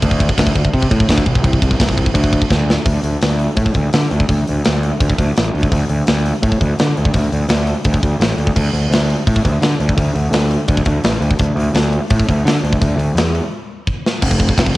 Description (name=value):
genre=heavy metal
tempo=169 BPM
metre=4/4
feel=straight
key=D minor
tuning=A4 = 440 Hz
part: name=fuzz picked electric bass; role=bass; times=0.0-14.7 s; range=F1 to D3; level=-15 LUFS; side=equal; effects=overdrive
part: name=tight metal drum kit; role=drums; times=0.0-14.8 s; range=crash cymbal, hi-hat, kick drum, snare drum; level=-16 LUFS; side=equal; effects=cassette tape
room=little or no reverb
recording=home recording on cassette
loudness=-13 LUFS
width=side -18 dB against mid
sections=0.0-2.9 A section; 2.9-14.2 B section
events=drum fill 2.5-2.9, 13.9-14.2; break 13.5-14.2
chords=none